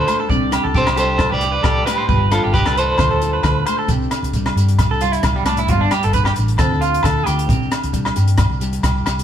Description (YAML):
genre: highlife guitar band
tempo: 133 BPM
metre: 4/4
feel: swing 53% on 16ths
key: unclear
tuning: A4 = 440 Hz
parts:
  - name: electric guitar at the edge of break-up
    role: melody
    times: 0.0-3.6 s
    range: F4 to D5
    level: -19 LUFS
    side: right 1 dB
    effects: tremolo
  - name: nylon-string guitar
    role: accompaniment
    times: 0.0-9.2 s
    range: G2 to G4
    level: -25 LUFS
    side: left 3 dB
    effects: none
  - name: electric guitar at the edge of break-up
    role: arpeggios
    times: 0.0-7.7 s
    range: G3 to D5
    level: -21 LUFS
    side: right 3 dB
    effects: none
  - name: hollow-body short-scale fingered electric bass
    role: bass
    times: 0.0-9.2 s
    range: G1 to G2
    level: -20 LUFS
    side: equal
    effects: none
  - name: compact cocktail drum kit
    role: drums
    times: 0.1-9.2 s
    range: hi-hat, kick drum, rim click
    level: -22 LUFS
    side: equal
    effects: none
  - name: agogo bells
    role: percussion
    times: 0.1-9.2 s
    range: none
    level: -25 LUFS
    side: equal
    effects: none
  - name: shekere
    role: percussion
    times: 0.1-9.2 s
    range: none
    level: -28 LUFS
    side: right 1 dB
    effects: none
room: moderate stone room reverb, RT60 1.3 s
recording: band playing live in one room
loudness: -14 LUFS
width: side -9 dB against mid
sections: 0.0-3.9 A section; 3.9-9.2 B section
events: clean electric guitar solo 3.9-9.2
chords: 0.3 Csus2; 2.1 G7; 3.0 Dm7; 3.9 Csus2; 5.7 G; 6.6 Dm7; 7.5 Csus2